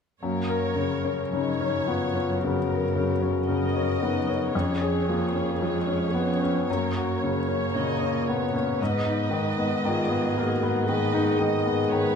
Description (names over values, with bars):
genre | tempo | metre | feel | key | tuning
classical, romantic movement for piano and orchestra | 56 BPM | 4/4 | rubato | F# major | A4 = 440 Hz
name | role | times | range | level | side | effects
bright grand piano | melody | 0.2-12.2 s | E#2 to A#4 | -26 LUFS | left 3 dB | none
rich studio viola section | accompaniment | 0.2-12.2 s | G#4 to D#5 | -32 LUFS | right 2 dB | none
dark French horn section | sustained chords | 0.2-12.2 s | G#3 to G#4 | -30 LUFS | left 3 dB | none
warm chamber cello section | bass | 0.2-12.2 s | E#2 to A#2 | -31 LUFS | right 4 dB | none
room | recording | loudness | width
moderate recital hall reverb, RT60 1.7 s | close, detailed microphones | -23 LUFS | side -6 dB against mid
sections
0.2-12.2 A section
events
none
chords
0.2 F#; 4.5 C#7/E#; 6.7 F#; 8.8 G#m